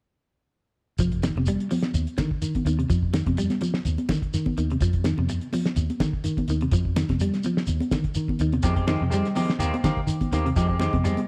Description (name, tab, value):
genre	afrobeat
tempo	125 BPM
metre	4/4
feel	swing 55% on 16ths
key	F dorian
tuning	A4 = 441 Hz
part	clean electric guitar	arpeggios	1.0-11.2 s	C3 to G3	-30 LUFS	equal	lush chorus
part	fingered electric bass	bass	1.0-11.1 s	F1 to Eb3	-28 LUFS	equal	none
part	cloth-damped thuddy drum kit	drums	1.0-11.3 s	hi-hat, kick drum, snare drum	-31 LUFS	equal	none
part	shekere	percussion	1.0-11.2 s	none	-34 LUFS	equal	none
part	congas	percussion	1.2-11.3 s	none	-32 LUFS	equal	none
part	semi-hollow electric guitar	stabs	8.6-11.2 s	Eb3 to G4	-31 LUFS	equal	spring reverb
room	light reverb, small room ambience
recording	none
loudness	-24 LUFS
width	mono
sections	1.0-11.3 A section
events	none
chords	1.0 Fsus2; 1.9 Cmadd9/Eb (rootless); 2.9 Fsus2; 3.9 Cmadd9/Eb (rootless); 4.8 N.C.; 5.8 Cmadd9/Eb (rootless); 6.7 Fsus2; 7.7 Cmadd9/Eb (rootless); 8.6 Fm9; 9.6 Eb6; 10.6 Fm9